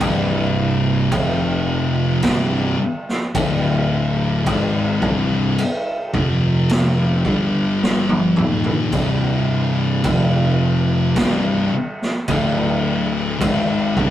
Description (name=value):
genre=stoner and doom metal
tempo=54 BPM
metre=4/4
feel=straight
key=C minor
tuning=A4 = 440 Hz
part: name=thick fuzz guitar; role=riff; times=0.0-14.1 s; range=C2 to Ab3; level=-19 LUFS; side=left 4 dB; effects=distortion
part: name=thick fuzz guitar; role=riff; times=0.0-14.1 s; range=C2 to Ab3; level=-23 LUFS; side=right 4 dB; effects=distortion
part: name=fuzz picked electric bass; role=bass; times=0.0-14.1 s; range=C1 to Ab1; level=-26 LUFS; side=right 2 dB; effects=overdrive
part: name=raw garage drum kit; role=drums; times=0.0-14.1 s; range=crash cymbal, kick drum, snare drum, toms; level=-22 LUFS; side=right 1 dB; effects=none
room=light reverb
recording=rough rehearsal-room recording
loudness=-16 LUFS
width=side -12 dB against mid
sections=0.0-14.1 A section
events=drum fill 7.8-8.9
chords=0.0 C5; 1.1 F5; 2.2 C5; 3.4 D5; 4.5 Cm; 6.1 F5; 7.3 G5; 8.4 Cm; 10.0 F5; 11.2 C5; 12.3 D5; 13.4 Cm